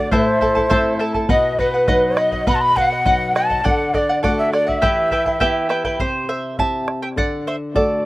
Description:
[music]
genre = andean folk, Andean ensemble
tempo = 102 BPM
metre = 2/4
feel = straight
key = unclear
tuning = A4 = 440 Hz
[part]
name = breathy reedy large quena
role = melody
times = 0.0-5.7 s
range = B4 to B5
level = -19 LUFS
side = equal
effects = none
[part]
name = charango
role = accompaniment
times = 0.0-8.1 s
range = E4 to A5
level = -20 LUFS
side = right 1 dB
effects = slapback echo
[part]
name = flamenco guitar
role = accompaniment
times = 0.0-8.1 s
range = A2 to G4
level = -25 LUFS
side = left 2 dB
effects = slapback echo
[part]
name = breathy polished pan flute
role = second line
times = 0.1-5.7 s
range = B4 to C6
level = -21 LUFS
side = left 1 dB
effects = slapback echo
[part]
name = bombo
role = percussion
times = 0.1-7.9 s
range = none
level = -24 LUFS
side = equal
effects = none
[sound]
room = light reverb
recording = recorded outdoors, with no room sound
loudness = -16 LUFS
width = side -18 dB against mid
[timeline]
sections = 0.0-6.0 A section; 6.0-8.1 B section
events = charango solo 6.0-8.1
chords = 0.1 Am; 1.3 B; 3.7 D; 4.8 Em; 6.0 C; 7.2 D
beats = | 0.12 0.71 | 1.30 1.89 | 2.48 3.06 | 3.65 4.24 | 4.82 5.41 | 6.00 6.58 | 7.17 7.75

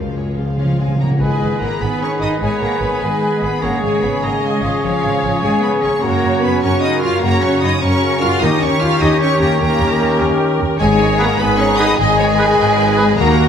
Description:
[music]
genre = cinematic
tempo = 100 BPM (dotted quarters)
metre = 12/8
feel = straight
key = unclear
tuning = A4 = 441 Hz
[part]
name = rich studio violin section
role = melody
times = 0.0-13.5 s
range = C#5 to E#6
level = -24 LUFS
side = left 2 dB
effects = none
[part]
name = warm symphonic violin section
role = second line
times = 0.0-13.5 s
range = E#4 to E#5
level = -26 LUFS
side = left 2 dB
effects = none
[part]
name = clear symphonic viola section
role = accompaniment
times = 0.0-13.5 s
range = E#3 to D#5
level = -26 LUFS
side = equal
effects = none
[part]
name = mellow French horn section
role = sustained chords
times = 0.0-13.5 s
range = E#3 to E#4+21c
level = -23 LUFS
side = left 3 dB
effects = none
[part]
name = concert harp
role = arpeggios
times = 0.0-13.5 s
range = F#2 to E#5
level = -24 LUFS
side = left 7 dB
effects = none
[part]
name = rich studio double bass section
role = bass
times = 0.0-13.5 s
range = G#1 to F#2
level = -21 LUFS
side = right 3 dB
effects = none
[part]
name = rich symphonic cello section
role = bass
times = 0.0-13.5 s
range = C#2 to E#4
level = -22 LUFS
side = equal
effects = none
[part]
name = timpani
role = percussion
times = 0.0-1.2 s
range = C#3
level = -19 LUFS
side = equal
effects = none
[part]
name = bright large flute ensemble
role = second line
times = 0.6-13.5 s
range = C#5 to C#6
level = -26 LUFS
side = equal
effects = none
[part]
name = bright clarinet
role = second line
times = 1.2-13.1 s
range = F#4 to G#4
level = -25 LUFS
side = equal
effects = none
[part]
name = clear oboe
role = second line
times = 1.2-13.0 s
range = B4 to C#5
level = -26 LUFS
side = right 1 dB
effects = none
[part]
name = warm trombone section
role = sustained chords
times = 1.2-13.5 s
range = C#3 to C#4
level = -23 LUFS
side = right 1 dB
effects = none
[part]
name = mellow trumpet section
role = stabs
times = 1.2-13.5 s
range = F#4 to G#4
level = -21 LUFS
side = equal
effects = none
[sound]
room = wet recital hall reverb, RT60 1.4 s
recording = none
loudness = -13 LUFS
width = side -8 dB against mid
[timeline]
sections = 0.0-1.2 A section; 1.2-13.5 B section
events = build-up 0.0-1.2; timpani fill 0.0-1.2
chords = 0.0 C#; 1.2 G#m; 3.6 C#/G#; 6.0 F#; 8.4 D#7; 10.8 G#m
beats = 0.58 | 1.21 1.82 2.42 3.03 | 3.63 4.24 4.83 5.43 | 6.03 6.63 7.23 7.82 | 8.42 9.01 9.61 10.20 | 10.79 11.39 11.99 12.59 | 13.19

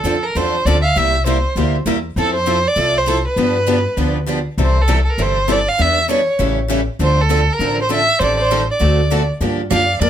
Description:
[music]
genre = acoustic string swing (jazz manouche)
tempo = 199 BPM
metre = 4/4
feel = swing 58% on 8ths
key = D minor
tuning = A4 = 441 Hz
[part]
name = warm violin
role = melody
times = 0.0-10.1 s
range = A4 to F5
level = -17 LUFS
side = right 1 dB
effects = none
[part]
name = picked steel-string acoustic guitar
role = accompaniment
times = 0.0-10.1 s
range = C3 to B4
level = -24 LUFS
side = right 8 dB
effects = none
[part]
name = upright bass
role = bass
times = 0.0-10.1 s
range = G1 to G2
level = -19 LUFS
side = equal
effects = none
[part]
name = picked steel-string acoustic guitar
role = accompaniment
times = 0.1-10.1 s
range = C3 to A4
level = -22 LUFS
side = left 4 dB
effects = none
[part]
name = picked steel-string acoustic guitar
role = second line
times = 9.7-10.1 s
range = Bb4 to D5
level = -20 LUFS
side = right 6 dB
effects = none
[sound]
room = light reverb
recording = close, detailed microphones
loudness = -14 LUFS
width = side -10 dB against mid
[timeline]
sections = 0.0-9.4 A section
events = none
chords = 0.0 Dm7; 1.0 C7; 2.2 Fmaj7; 3.4 G7; 4.6 C6; 5.8 Em7; 6.4 A7; 7.0 Dm7; 8.2 Am7b5; 8.8 D7; 9.4 Gm7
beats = 0.05 0.35 0.65 | 0.95 1.26 1.56 1.86 | 2.16 2.47 2.77 3.07 | 3.37 3.67 3.98 4.28 | 4.58 4.88 5.18 5.49 | 5.79 6.09 6.39 6.69 | 7.00 7.30 7.60 7.90 | 8.20 8.50 8.81 9.11 | 9.41 9.71 10.01

